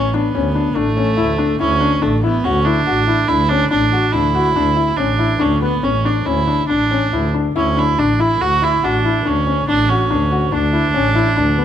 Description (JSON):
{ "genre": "contemporary instrumental, chamber music in an uneven meter", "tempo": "142 BPM", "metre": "7/4", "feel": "straight", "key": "D major", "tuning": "A4 = 441 Hz", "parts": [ { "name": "clear viola", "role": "second line", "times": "0.0-11.6 s", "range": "A3 to F#4", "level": "-18 LUFS", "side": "right 4 dB", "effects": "none" }, { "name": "felt-muted upright piano", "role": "arpeggios", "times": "0.0-11.6 s", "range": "B3 to F#4", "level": "-19 LUFS", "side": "left 6 dB", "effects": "none" }, { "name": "warm double bass", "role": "bass", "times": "0.0-11.6 s", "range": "A1 to D2", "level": "-19 LUFS", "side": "right 1 dB", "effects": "none" } ], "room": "moderate recital hall reverb, RT60 1.5 s", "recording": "close, detailed microphones", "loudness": "-14 LUFS", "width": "side -10 dB against mid", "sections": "0.0-11.6 A section", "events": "none", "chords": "0.0 Dmaj7(no3)" }